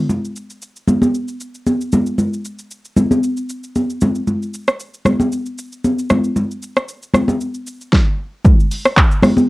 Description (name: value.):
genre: amapiano.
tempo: 115 BPM.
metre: 4/4.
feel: swing 55% on 16ths.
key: none.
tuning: none.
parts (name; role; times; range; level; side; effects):
deep house drum kit; drums; 0.1-9.5 s; handclaps, hi-hat, kick drum, rim click, shaker, snare drum; -15 LUFS; equal; overdrive, cassette tape.
congas; percussion; 0.1-9.5 s; none; -15 LUFS; equal; none.
room: light reverb.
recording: home recording on cassette.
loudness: -15 LUFS.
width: side -20 dB against mid.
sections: 0.1-8.4 A section; 8.4-9.5 B section.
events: drop 8.4-9.5.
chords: none.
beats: | 0.10 0.62 1.14 1.67 | 2.19 2.71 3.23 3.75 | 4.28 4.80 5.32 5.84 | 6.36 6.88 7.41 7.93 | 8.45 8.97.